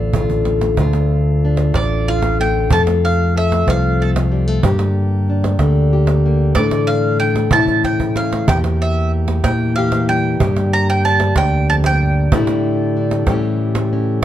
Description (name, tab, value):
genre	acoustic folk duo or small band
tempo	62 BPM (dotted quarters)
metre	6/8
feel	straight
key	D minor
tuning	A4 = 436 Hz
part	nylon-string guitar	accompaniment	0.0-14.2 s	D2 to A4	-20 LUFS	left 3 dB	none
part	pipe organ, sparkling flutes	sustained chords	0.0-14.2 s	C3 to G4	-26 LUFS	equal	none
part	fingered electric bass	bass	0.0-14.2 s	A1 to Bb2	-17 LUFS	equal	none
part	cajon	percussion	0.1-13.9 s	none	-19 LUFS	right 3 dB	none
part	bowl-back mandolin	second line	1.8-13.4 s	A4 to Bb5	-20 LUFS	right 3 dB	none
room	light reverb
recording	dark, warm production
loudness	-14 LUFS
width	side -12 dB against mid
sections	0.8-14.2 A section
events	drum fill 0.3-0.8, 7.7-8.5; mandolin solo 0.8-14.2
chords	0.0 Dm; 2.7 F; 4.6 Gm; 6.6 Asus4; 7.5 A; 8.5 Edim; 10.4 Gm; 12.3 A7sus4; 13.3 A7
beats	| 0.78 1.74 | 2.71 3.67 | 4.63 5.60 | 6.56 7.52 | 8.48 9.44 | 10.40 11.36 | 12.32 13.28 | 14.24